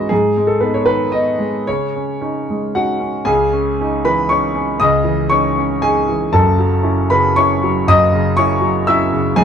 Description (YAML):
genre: neoclassical minimalist piano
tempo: 111-121 BPM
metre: 3/4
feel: rubato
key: C# minor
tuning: A4 = 440 Hz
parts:
  - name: clear concert grand piano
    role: solo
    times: 0.0-9.4 s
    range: F#1 to E6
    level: -13 LUFS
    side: equal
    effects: none
room: light reverb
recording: band playing live in one room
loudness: -13 LUFS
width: side -8 dB against mid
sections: 0.0-3.3 A section; 3.3-9.4 B section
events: none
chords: 0.1 G#m; 1.7 C#sus2; 3.3 C#madd9; 6.3 F#m7